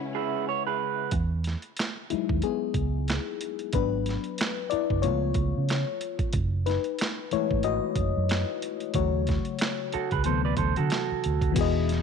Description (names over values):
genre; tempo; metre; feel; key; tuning
R&B, neo-soul; 92 BPM; 4/4; swing 56% on 16ths; unclear; A4 = 440 Hz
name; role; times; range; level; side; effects
FM electric piano with auto-pan; accompaniment; 0.0-12.0 s; C3 to F#5; -29 LUFS; left 11 dB; none
warm symphonic string section; sustained chords; 0.0-1.1, 11.6-12.0 s; C#3 to E4; -39 LUFS; equal; none
electric guitar through a small old amp; second line; 0.1-1.1, 9.9-11.5 s; E4 to D5; -29 LUFS; right 16 dB; none
vintage muted fingered electric bass; bass; 1.1-12.0 s; E1 to D3; -28 LUFS; right 2 dB; none
boom bap sampler-style drum kit; drums; 1.1-12.0 s; crash cymbal, finger snaps, hi-hat, kick drum, snare drum; -30 LUFS; right 2 dB; none
room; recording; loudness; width
light reverb, digital ambience; 1960s-style stereo with parts hard left and right; -25 LUFS; side -6 dB against mid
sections
0.0-1.1 A section; 1.1-11.6 B section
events
break 0.0-1.1; FM electric piano solo 1.1-11.6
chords
0.0 C#m7; 3.7 G#m7b5; 5.0 C#7b13; 6.3 F#m7; 8.9 D#m7b5; 10.3 D13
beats
0.47 | 1.12 1.77 2.42 3.08 | 3.73 4.38 5.03 5.68 | 6.34 6.99 7.64 8.29 | 8.95 9.60 10.25 10.90 | 11.55